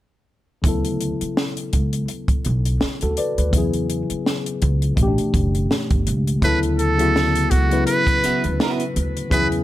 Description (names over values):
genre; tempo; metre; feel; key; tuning
R&B, neo-soul; 83 BPM; 4/4; swing 56% on 16ths; D major; A4 = 441 Hz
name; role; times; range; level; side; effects
tine electric piano; accompaniment; 0.6-9.6 s; B2 to D5; -23 LUFS; left 3 dB; lush chorus
upright bass; bass; 0.6-9.6 s; F#1 to E2; -22 LUFS; equal; none
compact cocktail drum kit; drums; 0.6-9.6 s; hi-hat, kick drum, snare drum; -22 LUFS; equal; none
trumpet with metal mute; melody; 6.4-9.5 s; F#4 to B4; -21 LUFS; right 2 dB; none
clean electric guitar; second line; 8.2-8.8 s; B3 to B4; -24 LUFS; right 5 dB; none
room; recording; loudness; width
light reverb; none; -18 LUFS; side -14 dB against mid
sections
0.6-6.4 A section; 6.4-9.6 B section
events
none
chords
0.6 D69; 3.5 E69; 5.0 A13sus4; 6.4 D69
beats
| 0.64 1.36 2.08 2.81 | 3.53 4.25 4.97 5.70 | 6.42 7.14 7.87 8.59 | 9.31